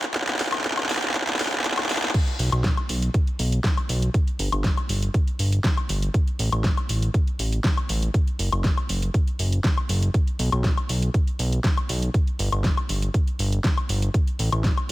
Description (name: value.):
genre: progressive house.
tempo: 120 BPM.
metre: 4/4.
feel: straight.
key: unclear.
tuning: A4 = 441 Hz.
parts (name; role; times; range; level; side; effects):
pop drum kit; drums; 0.0-14.9 s; crash cymbal, handclaps, hi-hat, snare drum, woodblock; -26 LUFS; left 1 dB; none.
electronic kick drum; drums; 0.1-14.7 s; none; -22 LUFS; equal; high-pass filter on kick.
fat analog bass; bass; 2.4-14.9 s; F#1 to B1; -23 LUFS; equal; sidechain pumping.
room: light reverb, digital ambience.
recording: none.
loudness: -21 LUFS.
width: side -18 dB against mid.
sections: 0.0-2.1 A section; 2.1-14.9 B section.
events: build-up 0.0-2.1; drum fill 0.0-2.1; drop 2.1-14.9.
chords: none.